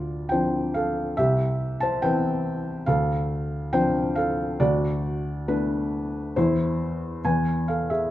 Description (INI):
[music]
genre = classical, lyrical solo piano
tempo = 69 BPM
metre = 4/4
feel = rubato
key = unclear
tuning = A4 = 438 Hz
[part]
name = felt-muted upright piano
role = solo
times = 0.0-8.1 s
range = C2 to A5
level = -22 LUFS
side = equal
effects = none
[sound]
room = moderate recital hall reverb, RT60 1.4 s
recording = none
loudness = -22 LUFS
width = side -14 dB against mid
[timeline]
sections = 0.0-8.1 A section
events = none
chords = 0.0 Dm7; 1.2 Cmaj7; 2.9 Dm7; 4.6 Bm7/D; 6.4 N.C.; 7.2 E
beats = 0.32 | 1.18 2.03 2.88 3.73 | 4.60 5.48 6.37 7.24